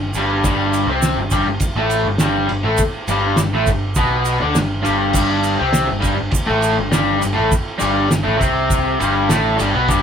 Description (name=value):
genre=garage rock duo or trio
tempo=102 BPM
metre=4/4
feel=straight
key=G major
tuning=A4 = 440 Hz
part: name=raw garage guitar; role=riff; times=0.0-10.0 s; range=G2 to D4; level=-17 LUFS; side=left 1 dB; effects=overdrive
part: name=growling picked electric bass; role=bass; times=0.0-10.0 s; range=G1 to D2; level=-23 LUFS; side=equal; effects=overdrive
part: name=tube shaker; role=percussion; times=0.1-10.0 s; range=none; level=-29 LUFS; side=right 9 dB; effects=none
part: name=cloth-damped thuddy drum kit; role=drums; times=0.2-10.0 s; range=crash cymbal, kick drum, ride cymbal, snare drum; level=-21 LUFS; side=right 1 dB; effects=none
room=light reverb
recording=band playing live in one room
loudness=-15 LUFS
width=side -8 dB against mid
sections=0.0-10.0 A section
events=none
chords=0.0 G